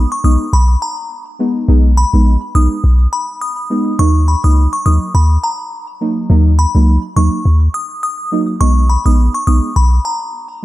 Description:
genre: dancehall.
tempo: 104 BPM.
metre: 4/4.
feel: swing 56% on 16ths.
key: B major.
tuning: A4 = 436 Hz.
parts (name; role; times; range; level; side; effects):
deep mellow chord stab; accompaniment; 0.0-10.6 s; F#3 to D#4; -18 LUFS; right 2 dB; chorus.
warm 808-style bass; bass; 0.0-10.0 s; A#1 to D#2; -10 LUFS; equal; none.
glassy synth bell; melody; 0.1-10.2 s; A#5 to D#6; -20 LUFS; left 1 dB; chorus, tape echo.
room: light reverb, digital ambience.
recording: dark, warm production.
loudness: -11 LUFS.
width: side -16 dB against mid.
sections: 0.0-10.6 A section.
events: none.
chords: 0.0 B6; 4.0 D#m; 8.6 B6.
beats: 0.53 1.11 | 1.68 2.26 2.84 3.42 | 3.99 4.57 5.15 5.72 | 6.30 6.88 7.45 8.03 | 8.61 9.18 9.76 10.34.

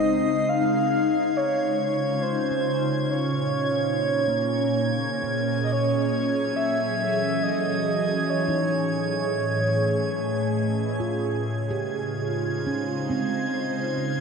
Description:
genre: ambient.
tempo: 69 BPM.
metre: 3/4.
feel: straight.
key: unclear.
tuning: A4 = 441 Hz.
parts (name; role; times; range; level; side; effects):
breathy flute-like synth lead; melody; 0.0-10.5 s; C5 to F5; -27 LUFS; equal; tremolo, lush chorus, ping-pong delay.
ethereal airy pad; sustained chords; 0.0-14.2 s; A2 to C5; -25 LUFS; equal; ensemble chorus, built-in reverb, phaser.
handpan; arpeggios; 0.0-13.9 s; Bb3 to Bb4; -35 LUFS; right 2 dB; ping-pong delay.
organ-like drone; drone; 0.0-0.6 s; Db3 to Ab3; -34 LUFS; equal; ensemble chorus, built-in reverb.
drifting glass-harmonics texture; texture; 0.0-14.2 s; Ab6 to C7; -33 LUFS; equal; chorus, built-in reverb.
room: wet lush hall reverb, RT60 2.6 s.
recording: dark, warm production.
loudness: -22 LUFS.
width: side -5 dB against mid.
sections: 0.5-14.2 A section.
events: fade-in on handpan 0.5-14.2.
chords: 0.5 Dbmaj7; 3.1 Bbm7; 5.7 Gbm7; 8.3 Amaj7; 10.9 Dbmaj7; 13.5 Bbm7.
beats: | 0.47 1.34 2.21 | 3.08 3.95 4.82 | 5.69 6.56 7.43 | 8.30 9.17 10.04 | 10.91 11.78 12.65 | 13.52.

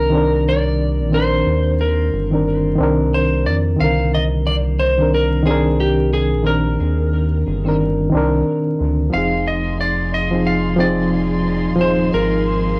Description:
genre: trip hop.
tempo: 90 BPM.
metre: 4/4.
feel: swing 59% on 16ths.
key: C minor.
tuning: A4 = 438 Hz.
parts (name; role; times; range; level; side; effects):
clean lap steel guitar; melody; 0.0-12.8 s; G4 to F5; -24 LUFS; equal; tape echo.
reed electric piano; accompaniment; 0.0-12.8 s; D3 to Bb4; -20 LUFS; equal; harmonic tremolo, vintage 12-bit sampler grit, cassette tape.
round analog bass; bass; 0.0-12.8 s; Eb1 to F2; -22 LUFS; equal; none.
warm symphonic violin section; sustained chords; 9.1-12.8 s; Eb4 to C6; -30 LUFS; equal; cassette tape.
room: light reverb.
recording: home recording on cassette, vinyl crackle.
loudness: -17 LUFS.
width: mono.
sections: 0.0-12.8 A section.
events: none.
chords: 0.0 Cm9; 9.1 Fm7.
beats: 0.46 | 1.13 1.79 2.46 3.13 | 3.79 4.46 5.13 5.79 | 6.46 7.13 7.79 8.46 | 9.13 9.79 10.46 11.13 | 11.79 12.46.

